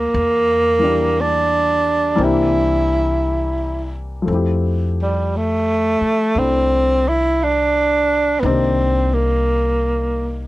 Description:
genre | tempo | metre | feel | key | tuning
jazz ballad | 58 BPM | 4/4 | swing 67% on 8ths | F major from 4.3 s | A4 = 440 Hz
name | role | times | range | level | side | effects
breathy tenor saxophone | melody | 0.0-10.5 s | G3 to E4 | -16 LUFS | right 1 dB | none
warm upright piano | accompaniment | 0.0-10.5 s | Eb3 to A4 | -23 LUFS | left 3 dB | none
upright bass | bass | 0.0-10.5 s | C2 to F2 | -22 LUFS | left 1 dB | none
room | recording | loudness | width
little or no reverb | none | -15 LUFS | side -17 dB against mid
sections
0.0-4.3 A section; 4.3-10.5 B section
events
none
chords
0.1 Em7b5; 2.2 C7; 4.3 Fmaj7; 8.4 Cm7

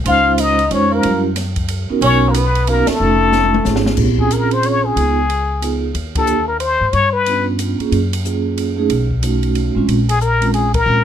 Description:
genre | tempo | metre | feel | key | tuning
jazz, small-group swing and bop | 183 BPM | 3/4 | swing 63% on 8ths | Bb minor | A4 = 441 Hz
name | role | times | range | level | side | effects
vibraphone with soft mallets | accompaniment | 0.0-11.0 s | G3 to C5 | -18 LUFS | right 4 dB | none
upright bass | bass | 0.0-11.0 s | F1 to Ab2 | -19 LUFS | equal | none
trumpet with plunger mute | melody | 0.1-7.5, 10.1-11.0 s | Ab4 to F5 | -16 LUFS | left 4 dB | none
bright tenor saxophone | second line | 0.1-3.9 s | A3 to F4 | -23 LUFS | right 7 dB | none
open jazz drum kit | drums | 0.1-10.8 s | crash cymbal, hi-hat, kick drum, ride cymbal, snare drum, toms | -24 LUFS | equal | none
room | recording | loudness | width
little or no reverb | close, detailed microphones | -13 LUFS | side -9 dB against mid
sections
0.0-4.0 A section; 4.0-11.0 B section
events
band accent 2.8, 6.1, 10.7; drum fill 3.3-4.0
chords
0.1 Dbmaj9; 1.0 Gb7b9; 2.0 Bmaj9; 3.0 F7alt; 4.0 Bbm7; 5.0 Db9; 6.0 N.C.; 6.9 G7#11; 7.9 Gbmaj7; 8.9 B9; 9.9 Bbm7

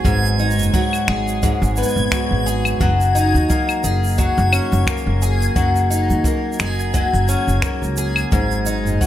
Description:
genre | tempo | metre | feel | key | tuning
folktronica | 87 BPM | 4/4 | swing 56% on 16ths | unclear | A4 = 440 Hz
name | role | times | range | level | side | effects
picked twelve-string acoustic guitar | arpeggios | 0.0-9.1 s | G#2 to G#4 | -20 LUFS | left 1 dB | tape echo
upright bass | bass | 0.0-8.9 s | F#1 to D#2 | -19 LUFS | equal | none
kick drum | drums | 0.0-9.1 s | none | -21 LUFS | equal | none
backwards swelling texture | texture | 0.0-9.1 s | F#6 to G#6 | -28 LUFS | equal | built-in reverb
shaker, claves and finger snaps | drums | 0.1-9.1 s | none | -25 LUFS | equal | none
room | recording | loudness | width
light reverb, small room ambience | none | -15 LUFS | side -12 dB against mid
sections
0.0-9.1 A section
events
none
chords
0.0 G#m7; 2.8 F#69; 8.3 G#7(no3)

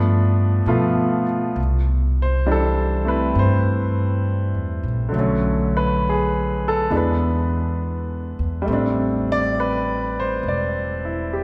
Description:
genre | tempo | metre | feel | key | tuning
jazz ballad | 68 BPM | 4/4 | swing 68% on 8ths | C major | A4 = 440 Hz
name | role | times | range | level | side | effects
clear baby grand piano | accompaniment | 0.0-11.4 s | D3 to D5 | -23 LUFS | equal | none
upright bass | bass | 0.0-11.4 s | E1 to B2 | -24 LUFS | equal | none
room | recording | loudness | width
wet church reverb, RT60 2.9 s | recorded in a church or concert hall | -21 LUFS | mono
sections
0.0-1.6 A section; 1.6-11.4 B section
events
none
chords
0.0 G9; 1.6 Cadd9; 5.1 Bm7; 6.9 E7; 8.7 Am7

